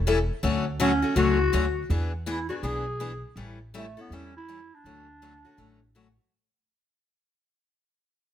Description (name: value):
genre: acoustic string swing (jazz manouche)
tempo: 163 BPM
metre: 4/4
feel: swing 61% on 8ths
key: D major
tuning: A4 = 440 Hz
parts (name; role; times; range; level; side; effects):
- growling clarinet; melody; 0.0-6.0 s; A3 to G#4; -28 LUFS; left 1 dB; slapback echo
- upright bass; bass; 0.0-6.2 s; E1 to E2; -28 LUFS; equal; none
- picked steel-string acoustic guitar; accompaniment; 0.1-6.1 s; D3 to A4; -28 LUFS; left 5 dB; none
room: moderate studio reverb, RT60 1.0 s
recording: none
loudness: -23 LUFS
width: side -10 dB against mid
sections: 0.0-6.3 A section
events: fade-out 0.0-6.3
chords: 0.4 Dmaj7; 1.9 E7; 3.4 A7; 4.8 Dmaj7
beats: 0.06 | 0.43 0.80 1.16 1.53 | 1.90 2.27 2.63 3.00 | 3.37 3.74 4.11 4.47 | 4.84 5.21 5.58 5.95